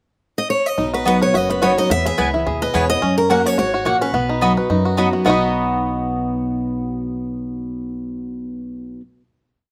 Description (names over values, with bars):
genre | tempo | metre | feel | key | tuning
bluegrass | 214 BPM | 4/4 | swing 55% on 8ths | B major | A4 = 439 Hz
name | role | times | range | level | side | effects
picked steel-string acoustic guitar | melody | 0.4-4.9 s | A#4 to E5 | -22 LUFS | equal | none
picked steel-string acoustic guitar | accompaniment | 0.8-9.0 s | E2 to F#4 | -25 LUFS | equal | none
bluegrass banjo | arpeggios | 0.8-9.0 s | F#3 to B4 | -24 LUFS | equal | none
upright bass | bass | 0.8-9.0 s | F#1 to F#2 | -30 LUFS | equal | none
mandolin | stabs | 1.1-9.0 s | A#3 to B5 | -24 LUFS | equal | none
room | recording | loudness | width
little or no reverb | recorded outdoors, with no room sound | -19 LUFS | mono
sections
0.0-0.8 pickup bar; 0.8-5.3 A section; 5.3-7.5 final chord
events
none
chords
0.0 N.C.; 0.8 B; 1.9 E; 3.0 F#; 4.1 B